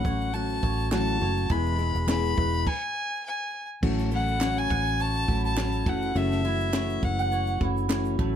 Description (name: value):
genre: acoustic pop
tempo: 103 BPM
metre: 4/4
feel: swing 55% on 16ths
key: A major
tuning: A4 = 439 Hz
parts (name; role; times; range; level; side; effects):
- warm violin; melody; 0.0-7.6 s; E5 to B5; -30 LUFS; left 2 dB; none
- fingerpicked plugged-in steel-string acoustic guitar; accompaniment; 0.0-8.4 s; F#2 to G#4; -29 LUFS; left 2 dB; none
- bowl-back mandolin; arpeggios; 0.0-8.4 s; G#3 to F#5; -36 LUFS; right 8 dB; none
- vintage muted fingered electric bass; bass; 0.0-8.4 s; E1 to A1; -28 LUFS; right 1 dB; none
- compact cocktail drum kit; drums; 0.0-8.3 s; crash cymbal, kick drum, shaker, snare drum; -30 LUFS; equal; none
- group handclap; percussion; 0.9-8.1 s; none; -36 LUFS; right 6 dB; none
room: little or no reverb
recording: close, detailed microphones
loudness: -24 LUFS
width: side -9 dB against mid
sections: 0.0-3.8 A section; 3.8-8.4 B section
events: stop 2.7-3.8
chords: 0.0 F#m7; 1.5 E; 3.8 A6; 5.9 F#m7